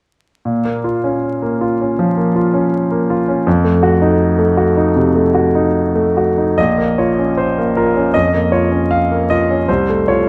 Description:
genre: classical, romantic character piece for solo piano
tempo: 78 BPM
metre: 4/4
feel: uneven beats, rubato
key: Bb minor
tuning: A4 = 440 Hz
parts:
  - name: bright grand piano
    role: solo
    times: 0.5-10.3 s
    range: Bb1 to F5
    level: -15 LUFS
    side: equal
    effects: none
room: moderate recital hall reverb, RT60 1.6 s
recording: dark, warm production, vinyl crackle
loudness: -15 LUFS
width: mono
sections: 0.4-6.6 A section; 6.6-10.3 B section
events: none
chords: 0.4 Bbm; 3.5 F7b9; 6.6 Bbm; 9.7 F/C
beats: | 0.44 1.23 1.98 2.72 | 3.46 4.19 4.95 5.75 | 6.57 7.37 8.13 8.90 | 9.68

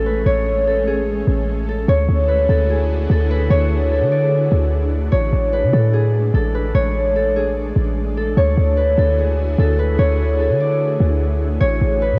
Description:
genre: hip hop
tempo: 148 BPM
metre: 4/4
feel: half-time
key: A major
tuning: A4 = 442 Hz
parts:
  - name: Celtic harp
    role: melody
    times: 0.0-12.2 s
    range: G#4 to D5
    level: -22 LUFS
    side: equal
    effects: low-pass filter, cassette tape, analog delay
  - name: ethereal airy pad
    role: sustained chords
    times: 0.0-12.2 s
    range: D3 to G#4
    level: -28 LUFS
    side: equal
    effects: ensemble chorus, built-in reverb, cassette tape
  - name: warm 808-style bass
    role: bass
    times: 0.0-12.2 s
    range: A1 to D3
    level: -20 LUFS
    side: equal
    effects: none
  - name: drifting glass-harmonics texture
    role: texture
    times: 11.6-12.2 s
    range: none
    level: barely audible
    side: none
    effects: none
room: light reverb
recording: home recording on cassette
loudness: -17 LUFS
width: mono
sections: 0.0-12.2 A section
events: none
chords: 0.0 Amaj7; 1.9 Dmaj9#11; 5.1 Amaj7; 8.4 Dmaj9#11; 11.6 Amaj7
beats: | 0.26 0.67 1.07 1.48 | 1.88 2.29 2.69 3.10 | 3.50 3.91 4.32 4.72 | 5.13 5.53 5.94 6.34 | 6.75 7.15 7.56 7.96 | 8.37 8.78 9.18 9.59 | 9.99 10.40 10.80 11.21 | 11.61 12.02

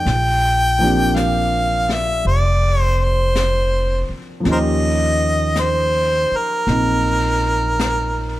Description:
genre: jazz ballad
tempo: 54 BPM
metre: 4/4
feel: swing 68% on 8ths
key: unclear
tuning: A4 = 439 Hz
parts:
  - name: clear harmonica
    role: melody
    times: 0.0-8.4 s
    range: Bb4 to G5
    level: -18 LUFS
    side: equal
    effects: none
  - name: warm grand piano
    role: accompaniment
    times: 0.0-8.4 s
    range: F3 to G4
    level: -23 LUFS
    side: equal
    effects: none
  - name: upright bass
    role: bass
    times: 0.1-8.4 s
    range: F1 to Eb2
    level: -20 LUFS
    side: equal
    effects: none
  - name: jazz brush drum kit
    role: drums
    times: 0.1-8.4 s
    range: brushed snare drum, hi-hat, snare drum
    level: -30 LUFS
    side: left 3 dB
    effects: none
room: light reverb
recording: none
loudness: -15 LUFS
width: side -15 dB against mid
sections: 0.0-8.4 A section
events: none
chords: 0.1 Bb69; 4.5 Eb7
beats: | 0.06 1.15 2.25 3.35 | 4.45 5.56 6.67 7.79

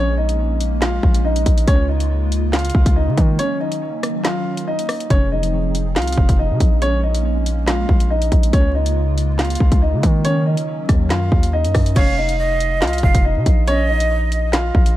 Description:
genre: hip hop, drill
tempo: 140 BPM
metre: 4/4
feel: half-time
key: F phrygian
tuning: A4 = 441 Hz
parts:
  - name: dark grand piano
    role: melody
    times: 0.0-14.9 s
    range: Db4 to F5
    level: -23 LUFS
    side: equal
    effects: none
  - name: hollow soft pad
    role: sustained chords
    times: 0.0-11.9 s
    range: Db3 to Ab4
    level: -26 LUFS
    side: equal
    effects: ensemble chorus
  - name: hard-hitting 808-style bass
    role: bass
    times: 0.0-15.0 s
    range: F1 to Eb3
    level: -18 LUFS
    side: equal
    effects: none
  - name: drill drum kit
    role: drums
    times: 0.3-15.0 s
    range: crash cymbal, handclaps, hi-hat, kick drum, rim click, snare drum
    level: -17 LUFS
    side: equal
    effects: none
  - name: breathy jazz flute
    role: second line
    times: 12.0-14.5 s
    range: Eb5 to F5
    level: -23 LUFS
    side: right 4 dB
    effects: digital delay
room: little or no reverb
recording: vinyl crackle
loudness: -15 LUFS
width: side -14 dB against mid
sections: 0.0-12.0 A section; 12.0-15.0 B section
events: break 3.4-5.1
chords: 0.0 Bbm7; 1.7 Db6; 3.4 Ebm7; 5.1 Fm7; 6.8 Bbm7; 8.5 Db6; 10.2 Ebm7; 12.0 F5; 13.7 Bbm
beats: 0.39 0.82 1.25 | 1.68 2.10 2.53 2.96 | 3.39 3.82 4.25 4.67 | 5.10 5.53 5.96 6.39 | 6.82 7.25 7.67 8.10 | 8.53 8.96 9.39 9.82 | 10.25 10.68 11.10 11.53 | 11.96 12.39 12.82 13.25 | 13.68 14.10 14.53 14.96

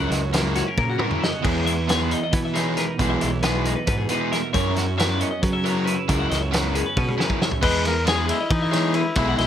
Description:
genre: math rock and midwest emo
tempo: 272 BPM (eighths)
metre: 7/8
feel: straight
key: E lydian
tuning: A4 = 440 Hz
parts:
  - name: twelve-string electric guitar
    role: accompaniment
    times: 0.0-7.6 s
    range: E2 to A#4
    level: -28 LUFS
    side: right 7 dB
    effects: harmonic tremolo
  - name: twelve-string electric guitar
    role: arpeggios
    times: 0.0-9.5 s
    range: F#4 to F#5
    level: -28 LUFS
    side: left 4 dB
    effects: none
  - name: overdriven electric guitar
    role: riff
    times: 0.0-9.5 s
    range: F#3 to A#4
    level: -25 LUFS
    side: left 1 dB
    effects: none
  - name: fuzz picked electric bass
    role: bass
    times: 0.0-9.5 s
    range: B1 to F#3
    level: -25 LUFS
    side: equal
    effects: overdrive
  - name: loose indie drum kit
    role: drums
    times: 0.1-9.5 s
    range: crash cymbal, hi-hat, kick drum, ride cymbal, snare drum, toms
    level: -25 LUFS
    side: equal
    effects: none
  - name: warm trumpet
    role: melody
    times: 7.6-9.5 s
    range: D#4 to B4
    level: -24 LUFS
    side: left 3 dB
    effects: slapback echo
room: little or no reverb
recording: none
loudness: -19 LUFS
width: side -10 dB against mid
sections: 0.0-7.6 A section; 7.6-9.5 B section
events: drum fill 0.8-1.4, 7.0-7.6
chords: 0.0 F#7; 1.4 Emaj7; 4.5 F#7sus4; 7.6 Emaj7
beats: 0.11 0.34 0.56 0.78 1.00 1.22 | 1.44 1.66 1.88 2.10 2.33 2.55 2.77 | 2.99 3.21 3.43 3.65 3.87 4.09 4.31 | 4.54 4.75 4.98 5.20 5.42 5.64 5.86 | 6.08 6.30 6.52 6.74 6.96 7.18 7.40 | 7.62 7.84 8.06 8.28 8.50 8.72 8.95 | 9.16 9.38

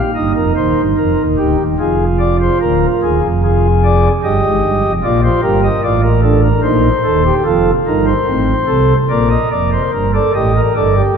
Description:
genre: classical, baroque-style 3-part fugue for pipe organ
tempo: 73 BPM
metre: 3/4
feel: straight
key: Eb major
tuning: A4 = 440 Hz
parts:
  - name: pipe organ, flutes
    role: solo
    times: 0.0-11.1 s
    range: D1 to Eb5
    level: -11 LUFS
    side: right 1 dB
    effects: none
room: wet church reverb, RT60 3.2 s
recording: dark, warm production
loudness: -11 LUFS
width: side -6 dB against mid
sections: 0.1-9.9 A section; 9.9-11.2 B section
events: none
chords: 0.1 Eb; 1.8 Fm; 2.6 Bb7/D; 4.2 Eb/G; 5.0 Bb; 6.6 Cm7/Bb; 7.5 F7; 9.1 Bb; 9.9 Gm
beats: | 0.12 0.95 1.78 | 2.60 3.41 4.22 | 5.03 5.83 6.64 | 7.46 8.29 9.11 | 9.94 10.76

